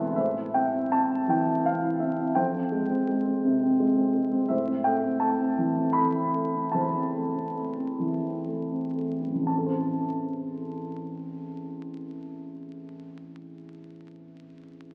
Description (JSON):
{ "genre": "classical, lyrical solo piano", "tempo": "59-85 BPM", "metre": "3/4", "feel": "rubato", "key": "A minor", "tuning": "A4 = 441 Hz", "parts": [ { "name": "dark concert grand piano", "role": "solo", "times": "0.0-14.9 s", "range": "E1 to B5", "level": "-28 LUFS", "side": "equal", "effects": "none" } ], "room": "wet concert hall reverb, RT60 2.5 s", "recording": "very old 78 rpm record, vinyl crackle", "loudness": "-27 LUFS", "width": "mono", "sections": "0.2-9.5 A section; 9.5-12.4 B section", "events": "slowing down 4.5-9.5", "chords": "0.2 Am; 2.4 Fmadd9; 4.5 Am" }